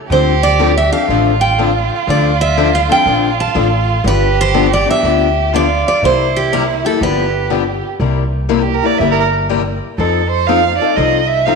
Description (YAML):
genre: acoustic string swing (jazz manouche)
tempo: 121 BPM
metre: 4/4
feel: swing 65% on 8ths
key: C mixolydian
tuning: A4 = 438 Hz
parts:
  - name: picked steel-string acoustic guitar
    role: melody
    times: 0.1-7.5 s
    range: G4 to A5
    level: -15 LUFS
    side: right 2 dB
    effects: none
  - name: warm violin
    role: second line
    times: 0.1-11.6 s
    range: E4 to F5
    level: -17 LUFS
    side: right 8 dB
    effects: slapback echo
  - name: picked steel-string acoustic guitar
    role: accompaniment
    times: 0.1-11.6 s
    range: C3 to A4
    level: -17 LUFS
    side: left 10 dB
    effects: none
  - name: upright bass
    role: bass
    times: 0.1-11.6 s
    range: G1 to F2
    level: -18 LUFS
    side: equal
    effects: none
room: wet echo chamber reverb, RT60 1.9 s, small room ambience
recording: 1960s-style stereo with parts hard left and right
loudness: -11 LUFS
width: side -4 dB against mid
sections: 0.0-8.0 A section; 8.0-11.6 B section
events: violin solo 8.0-11.6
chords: 0.1 Dm7; 4.0 G7; 6.0 C7; 7.0 G7; 8.0 C7; 10.0 F7